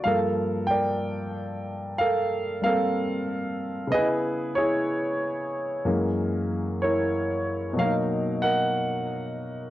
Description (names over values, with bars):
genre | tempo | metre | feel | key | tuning
solo jazz | 62 BPM | 4/4 | swing 66% on 8ths | unclear | A4 = 439 Hz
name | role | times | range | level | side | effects
warm concert grand piano | solo | 0.0-9.7 s | Gb2 to G5 | -24 LUFS | equal | none
room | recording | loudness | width
moderate studio reverb, RT60 0.6 s | worn, warbling old tape, cassette tape, warbly pitch drift | -24 LUFS | side -14 dB against mid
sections
0.0-9.7 A section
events
none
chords
0.1 Gm9; 3.9 Dbm7; 5.9 Gb9; 7.8 Bmaj7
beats
| 0.06 1.03 1.99 2.96 | 3.92 4.89 5.86 6.83 | 7.79 8.76